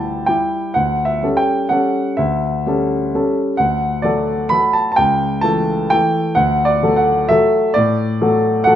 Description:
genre	classical, piano waltz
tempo	129 BPM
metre	3/4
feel	uneven beats, rubato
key	D major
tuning	A4 = 442 Hz
part	warm grand piano	solo	0.0-8.8 s	C#2 to B5	-14 LUFS	equal	none
room	moderate recital hall reverb, RT60 1.2 s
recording	minimal, uncompressed stereo recording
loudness	-14 LUFS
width	side -10 dB against mid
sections	0.0-8.8 A section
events	none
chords	0.0 Em7/D; 0.8 A7/D; 3.6 D; 5.0 A7/C#; 6.4 D

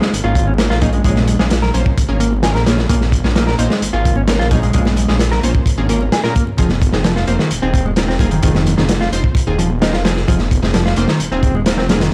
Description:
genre	breakbeat, breaks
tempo	130 BPM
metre	4/4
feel	straight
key	Bb minor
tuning	A4 = 440 Hz
part	mellow electric guitar	riff	0.0-12.1 s	Eb3 to Bb4	-22 LUFS	equal	overdrive, vintage 12-bit sampler grit, analog delay
part	crunchy breakbeat drum kit	drums	0.0-12.1 s	hi-hat, kick drum, snare drum	-19 LUFS	equal	none
part	impact	sound effects	0.1-1.0 s	none	barely audible	none	none
part	detuned saw bass	bass	0.1-12.1 s	Eb1 to Bb2	-20 LUFS	equal	tube saturation
part	orchestra-hit-like synth stab	stabs	0.2-12.0 s	Bb3 to C5	-26 LUFS	equal	built-in reverb, analog delay
part	congas	percussion	0.5-12.1 s	none	-29 LUFS	equal	none
room	little or no reverb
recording	dry, gritty hardware recording, transformer saturation, vinyl crackle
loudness	-15 LUFS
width	mono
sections	0.0-12.1 A section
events	impact 0.0-1.0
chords	0.0 Bbm7; 6.6 Fm7

